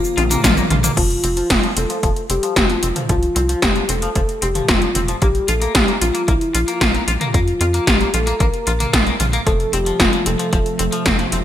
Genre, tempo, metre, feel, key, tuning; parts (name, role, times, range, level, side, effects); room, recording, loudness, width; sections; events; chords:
synthwave; 113 BPM; 4/4; straight; F major; A4 = 440 Hz
soft octave-layered synth lead; melody; 0.0-11.3 s; E4 to Bb4; -22 LUFS; left 1 dB; chorus, tremolo, digital delay
chorused pulse-width pad; sustained chords; 0.0-0.9, 9.5-11.4 s; C3 to Bb3; -27 LUFS; right 1 dB; sidechain pumping
80s electronic pad drums; drums; 0.0-11.4 s; cabasa, crash cymbal, hi-hat, snare drum, toms; -18 LUFS; equal; gated reverb on snare and toms, overdrive, gated reverb
twangy electric guitar; riff; 0.2-11.4 s; F3 to F4; -25 LUFS; left 3 dB; lush chorus, low-pass filter, digital delay
tight sequencer bass; bass; 0.2-11.4 s; F1 to F2; -21 LUFS; equal
electronic kick drum; drums; 0.4-11.2 s; -20 LUFS; equal; overdrive
light reverb; bright 1980s-style digital production; -15 LUFS; side -11 dB against mid
1.0-11.4 A section
drum fill 0.2-1.0; filter sweep on clean electric guitar 1.0-11.4
0.0 Bb; 1.0 F; 5.2 Bb5; 9.5 F